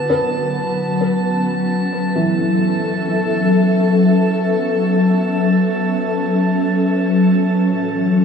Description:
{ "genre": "ambient", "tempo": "free time", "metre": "none", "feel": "none", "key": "unclear", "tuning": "A4 = 440 Hz", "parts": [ { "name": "ethereal airy pad", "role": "sustained chords", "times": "0.0-8.2 s", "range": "A2 to E5", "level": "-15 LUFS", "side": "left 1 dB", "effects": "ensemble chorus, built-in reverb, shimmer reverb" }, { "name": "felt-muted upright piano", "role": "arpeggios", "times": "0.0-7.3 s", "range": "E3 to B4", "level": "-24 LUFS", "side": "left 1 dB", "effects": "analog chorus, ping-pong delay, shimmer reverb" }, { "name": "organ-like drone", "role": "drone", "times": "0.0-7.4 s", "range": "B3", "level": "-28 LUFS", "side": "right 3 dB", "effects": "ensemble chorus, built-in reverb" }, { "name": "drifting glass-harmonics texture", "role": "texture", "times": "0.0-7.3 s", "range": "A5", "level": "-26 LUFS", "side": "right 2 dB", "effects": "chorus, built-in reverb, shimmer reverb" } ], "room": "wet plate reverb, RT60 2.7 s", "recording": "dreamy mix soaked in reverb", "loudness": "-14 LUFS", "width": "side -6 dB against mid", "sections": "0.0-7.3 A section", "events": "none", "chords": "0.0 F#m7; 7.3 A69" }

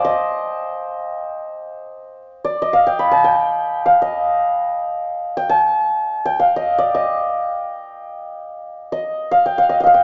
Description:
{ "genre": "Persian modal ensemble", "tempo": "free time", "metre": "none", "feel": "none", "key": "unclear", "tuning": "A4 = 442 Hz", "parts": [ { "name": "santur", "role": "solo", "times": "0.0-10.0 s", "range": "C5 to B5", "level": "-19 LUFS", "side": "equal", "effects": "none" } ], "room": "moderate large studio reverb, RT60 1.4 s", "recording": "nothing above 7.5 kHz", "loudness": "-18 LUFS", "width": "mono", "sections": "0.0-10.0 A section", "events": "none", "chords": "none" }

